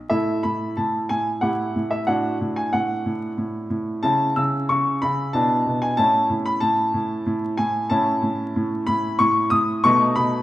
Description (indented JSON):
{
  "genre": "classical-period piano sonatina",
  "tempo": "93 BPM",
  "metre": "3/4",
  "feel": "rubato",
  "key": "A major",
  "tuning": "A4 = 440 Hz",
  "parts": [
    { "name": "bright baby grand piano", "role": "solo", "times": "0.1-10.4 s", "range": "A2 to E6", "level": "-19 LUFS", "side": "equal", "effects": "none" }
  ],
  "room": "wet recital hall reverb, RT60 1.4 s",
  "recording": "vinyl crackle",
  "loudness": "-19 LUFS",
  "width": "side -14 dB against mid",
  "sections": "0.1-10.4 A section",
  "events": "none",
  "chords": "0.1 A5; 2.1 D/A; 4.0 C#m7; 5.3 E5/B; 6.0 A; 9.8 B7"
}